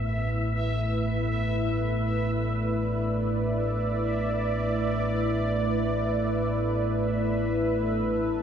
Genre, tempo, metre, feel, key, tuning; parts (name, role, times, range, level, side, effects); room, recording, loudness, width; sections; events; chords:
dark ambient drone; free time; A4 = 440 Hz
dark analog pad; sustained chords; 0.0-8.4 s; A3 to E5; -27 LUFS; equal; chorus
bronze singing bowl; arpeggios; 0.0-8.4 s; barely audible
deep rumbling drone; drone; 0.0-8.4 s; A1 to A2; -29 LUFS; equal; built-in reverb, wide subtle chorus
bubbling stepped-filter texture; texture; 0.0-8.4 s; E5 to A5; -35 LUFS; equal; chorus, built-in reverb
wet lush hall reverb, RT60 2.8 s; dreamy mix soaked in reverb; -24 LUFS; side -8 dB against mid
0.0-8.1 A section
filter sweep on synth drone 0.0-8.1
0.0 Em7/A